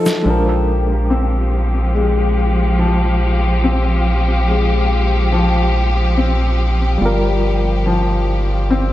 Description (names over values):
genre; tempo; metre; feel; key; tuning
trip hop; 71 BPM; 4/4; straight; unclear; A4 = 440 Hz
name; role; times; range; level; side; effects
barky reed electric piano; accompaniment; 0.0-8.9 s; F3 to Bb4; -21 LUFS; equal; overdrive, fast tremolo, tape echo
clear studio string section; sustained chords; 0.2-8.9 s; F3 to G4; -21 LUFS; left 1 dB; low-pass filter
felt-muted upright piano; arpeggios; 0.3-8.9 s; F3 to C4; -20 LUFS; left 3 dB; vintage 12-bit sampler grit, low-pass filter, tape echo
round analog bass; bass; 0.3-8.9 s; G1 to Bb1; -16 LUFS; equal; none
room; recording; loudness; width
light reverb, small room ambience; none; -14 LUFS; side -14 dB against mid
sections
0.3-8.9 A section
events
break 0.0; filter sweep on string section 0.3-8.9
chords
0.3 Bb7; 7.0 Gm7